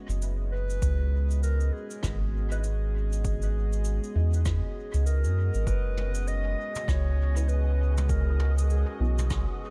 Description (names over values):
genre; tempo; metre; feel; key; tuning
ambient dub; 99 BPM; 4/4; swing 59% on 16ths; unclear; A4 = 440 Hz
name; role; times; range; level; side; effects
warm analog pad; sustained chords; 0.0-9.7 s; G#3 to D#5; -42 LUFS; equal; chorus
filtered dub chord stab; stabs; 0.0-9.7 s; B3 to B4; -47 LUFS; equal; phaser, subtle chorus, vintage 12-bit sampler grit, dub echo
soft dub sub bass; bass; 0.1-9.4 s; F#1 to F#2; -28 LUFS; equal; none
jazz brush drum kit; drums; 0.1-9.4 s; cabasa, rim click, toms; -44 LUFS; equal; dub echo
dark clarinet; melody; 0.5-9.6 s; F#4 to D#5; -40 LUFS; equal; dub echo
electronic kick drum; drums; 0.8-9.4 s; none; -34 LUFS; equal; none
wind-like tuned noise texture; texture; 6.4-9.7 s; G#4; -49 LUFS; equal; built-in reverb
room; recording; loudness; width
small room ambience; none; -27 LUFS; mono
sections
0.0-5.7 A section; 5.7-9.7 B section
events
none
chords
0.0 F#9sus4; 0.8 C#m7; 5.7 F#9sus4